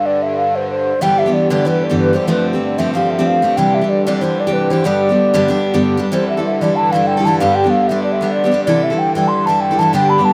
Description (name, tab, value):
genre	celtic folk, Celtic reel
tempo	188 BPM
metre	4/4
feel	swing 53% on 8ths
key	unclear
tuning	A4 = 440 Hz
part	mellow hollow baroque flute	melody	0.0-10.3 s	B4 to C6	-18 LUFS	equal	none
part	musette accordion	drone	0.0-10.3 s	G2 to D3	-25 LUFS	equal	none
part	picked steel-string acoustic guitar	accompaniment	1.0-10.3 s	G2 to A4	-18 LUFS	equal	none
room	little or no reverb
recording	recorded outdoors, with no room sound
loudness	-15 LUFS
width	mono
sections	0.0-6.1 A section; 6.1-10.3 B section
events	none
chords	0.0 G5; 1.0 G6; 2.3 Fadd9; 3.6 Cadd9; 4.9 G; 6.1 C6; 7.4 G; 8.7 C6